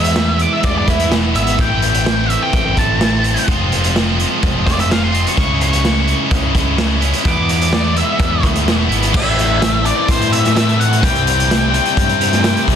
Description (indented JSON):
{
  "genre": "quiet-loud alternative rock",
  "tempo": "127 BPM",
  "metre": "4/4",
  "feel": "straight",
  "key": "A minor from 9.1 s",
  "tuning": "A4 = 440 Hz",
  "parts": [
    { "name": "octave-fuzz lead guitar", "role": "melody", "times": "0.0-12.6 s", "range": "E4 to D6", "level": "-19 LUFS", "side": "equal", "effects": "distortion, plate reverb, analog delay" },
    { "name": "electric guitar through a small old amp", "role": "arpeggios", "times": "0.0-1.6 s", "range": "E2 to E4", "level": "-25 LUFS", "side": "right 3 dB", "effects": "analog chorus, plate reverb" },
    { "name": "heavy high-gain guitar", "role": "riff", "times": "0.0-12.8 s", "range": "A2 to F4", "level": "-21 LUFS", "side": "left 16 dB", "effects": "distortion" },
    { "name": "scooped high-gain guitar", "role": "riff", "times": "0.0-9.1 s", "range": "A2 to F4", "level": "-20 LUFS", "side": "right 13 dB", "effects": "distortion" },
    { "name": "overdriven picked electric bass", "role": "bass", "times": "0.0-12.8 s", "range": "E1 to A2", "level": "-18 LUFS", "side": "equal", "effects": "none" },
    { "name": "raw garage drum kit", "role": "drums", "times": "0.0-12.8 s", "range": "crash cymbal, hi-hat, kick drum, snare drum", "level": "-18 LUFS", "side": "equal", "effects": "none" },
    { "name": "tight distorted guitar", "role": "riff", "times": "9.1-12.8 s", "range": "A2 to C4", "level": "-21 LUFS", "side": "equal", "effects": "distortion" }
  ],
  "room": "light reverb",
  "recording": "dense, heavily limited modern master",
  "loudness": "-12 LUFS",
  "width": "side -8 dB against mid",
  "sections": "0.0-9.1 A section; 9.1-12.8 B section",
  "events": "lead electric guitar solo 0.0-9.1",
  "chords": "0.0 E; 1.6 Am; 3.5 Fm; 5.4 C#m; 7.3 E; 9.1 Am; 11.0 C"
}